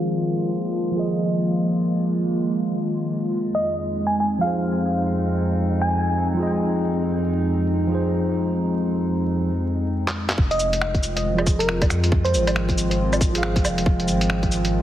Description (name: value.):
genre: future garage.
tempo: 138 BPM.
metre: 4/4.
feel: swing 61% on 16ths.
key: F minor.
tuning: A4 = 440 Hz.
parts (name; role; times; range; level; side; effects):
mellow tine electric piano; accompaniment; 0.0-14.8 s; F3 to F5; -24 LUFS; right 1 dB; auto-pan, sidechain pumping, low-pass filter, analog delay.
warbly tape-like pad; sustained chords; 0.0-14.8 s; F2 to F4; -24 LUFS; left 1 dB; chorus, built-in reverb, phaser, sidechain pumping.
bell-like FM electric piano; melody; 3.5-6.2, 10.5-12.6 s; Bb4 to Ab5; -25 LUFS; equal; chorus, analog delay.
lo-fi sampler-style drum kit; drums; 10.1-14.7 s; cabasa, finger snaps, handclaps, hi-hat, woodblock; -26 LUFS; equal; low-pass filter on snare, small room ambience, low-pass filter on hats, low-pass filter on perc.
soft dub sub bass; bass; 10.4-14.8 s; F1 to F2; -24 LUFS; equal; sidechain pumping.
electronic kick drum; drums; 10.4-14.5 s; none; -20 LUFS; equal; overdrive, small room ambience.
room: moderate lush hall reverb, RT60 2.0 s.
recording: heavily compressed radio sound, multiband compression, vinyl crackle, low-pass filter.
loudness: -19 LUFS.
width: side -12 dB against mid.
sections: 0.0-10.4 A section; 10.4-14.8 B section.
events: filter sweep on tine electric piano 0.0-10.4; filter sweep 0.0-10.4; drum fill 10.1-10.4.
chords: 0.0 Fm7; 3.4 Ab/F.